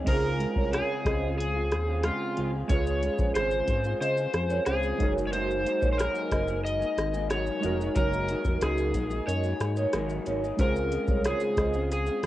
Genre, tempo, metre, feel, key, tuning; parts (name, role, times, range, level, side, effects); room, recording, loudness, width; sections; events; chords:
indie pop, bedroom pop; 91 BPM; 4/4; straight; Db major; A4 = 442 Hz
electric guitar through a small old amp; accompaniment; 0.0-12.3 s; Db3 to Ab4; -34 LUFS; left 3 dB; analog chorus, warbly pitch drift, cassette tape
warbly lo-fi synth keys; accompaniment; 0.0-12.3 s; Ab3 to Cb5; -35 LUFS; right 2 dB; chorus, cassette tape
overdriven slide guitar; melody; 0.1-12.3 s; F4 to Eb5; -31 LUFS; left 1 dB; lush chorus, cassette tape
vibraphone with medium mallets; second line; 0.1-11.7 s; Gb4 to Eb5; -32 LUFS; right 3 dB; analog chorus, cassette tape, analog delay
chorused synth bass; bass; 0.1-12.3 s; F1 to Db3; -31 LUFS; equal
soft vintage rhythm box; drums; 0.1-12.3 s; crash cymbal, hi-hat, kick drum, rim click, shaker; -30 LUFS; equal; cassette tape
moderate spring reverb, RT60 1.6 s; home recording on cassette; -25 LUFS; side -14 dB against mid
0.1-12.3 A section
0.1 Dbmaj7; 5.0 Gb69; 10.6 Dbmaj7